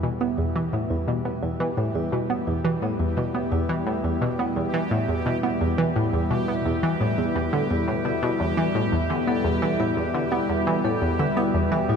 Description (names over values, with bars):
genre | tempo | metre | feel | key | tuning
ambient, sequencer-driven space music | 86 BPM | 4/4 | straight | E minor | A4 = 439 Hz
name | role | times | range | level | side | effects
sweeping resonant pad | sustained chords | 0.0-12.0 s | B2 to B4 | -28 LUFS | equal | chorus
analog pluck | riff | 0.0-12.0 s | E2 to B3 | -24 LUFS | equal | chorus, cassette tape, tape echo
bubbling stepped-filter texture | texture | 0.0-12.0 s | G4 | -35 LUFS | right 3 dB | chorus, built-in reverb
vibraphone with medium hard mallets | arpeggios | 0.2-12.0 s | B3 to E5 | -32 LUFS | moving between left 8 dB and right 1 dB | auto-pan, tape echo
room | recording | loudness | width
wet cathedral reverb, RT60 6.7 s | in a vast, echoing space | -22 LUFS | side -6 dB against mid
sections
0.0-12.0 A section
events
fade-in on vibraphone 0.0-12.0; fade-in on analog synth pad 0.0-12.0; fade-in on synth texture 0.0-12.0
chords
0.0 Em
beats
| 0.03 0.73 1.43 2.12 | 2.82 3.52 4.22 4.92 | 5.61 6.31 7.01 7.71 | 8.40 9.10 9.80 10.50 | 11.19 11.89